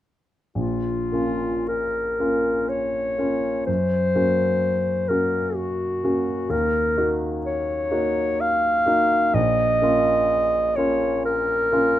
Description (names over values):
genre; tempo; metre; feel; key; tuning
classical, romantic duo for clarinet and grand piano; 52-65 BPM; 3/4; rubato; Bb minor; A4 = 437 Hz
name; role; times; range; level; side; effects
mellow clarinet; melody; 0.6-12.0 s; F4 to F5; -21 LUFS; left 1 dB; none
warm grand piano; accompaniment; 0.6-12.0 s; Bb1 to Gb4; -24 LUFS; equal; none
room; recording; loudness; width
little or no reverb; close, detailed microphones; -20 LUFS; side -12 dB against mid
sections
0.6-12.0 A section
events
none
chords
0.6 Bbm; 3.7 Gb; 6.5 Ebm7; 9.4 Bbm